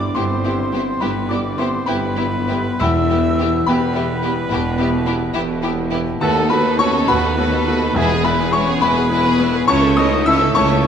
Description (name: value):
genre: classical, romantic movement for piano and orchestra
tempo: 70 BPM (dotted quarters)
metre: 12/8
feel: rubato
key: E minor, E major from 6.2 s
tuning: A4 = 440 Hz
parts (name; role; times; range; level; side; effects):
- warm baby grand piano; melody; 0.0-10.9 s; C#2 to E6; -20 LUFS; left 1 dB; none
- clear oboe; second line; 0.0-10.9 s; G#4 to E5; -26 LUFS; right 2 dB; none
- mellow hollow concert flute; second line; 0.0-10.9 s; G#5 to E6; -27 LUFS; left 2 dB; none
- dark French horn section; sustained chords; 0.0-10.9 s; G#3 to E4; -23 LUFS; left 4 dB; none
- clear studio cello section; bass; 0.0-10.9 s; D#2 to C#3; -27 LUFS; right 4 dB; none
- warm studio double bass section; bass; 0.0-10.9 s; E1 to D#2; -26 LUFS; right 4 dB; none
- warm tuba; bass; 0.0-10.9 s; E1 to D#2; -28 LUFS; right 3 dB; none
- warm studio violin section; melody; 0.2-10.9 s; G4 to C#5; -27 LUFS; left 4 dB; none
- rich studio violin section; second line; 0.2-10.9 s; C#4 to G#4; -27 LUFS; left 1 dB; none
- rich studio viola section; accompaniment; 0.2-10.9 s; G#3 to C#4; -26 LUFS; right 1 dB; none
- timpani; percussion; 2.8-8.8 s; E2; -26 LUFS; right 1 dB; none
room: wet scoring stage reverb, RT60 1.7 s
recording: none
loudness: -15 LUFS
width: side -8 dB against mid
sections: 0.0-10.9 A section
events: none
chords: 0.0 Em/G; 2.8 Em; 6.2 B7/D#; 8.0 E; 9.7 A/C#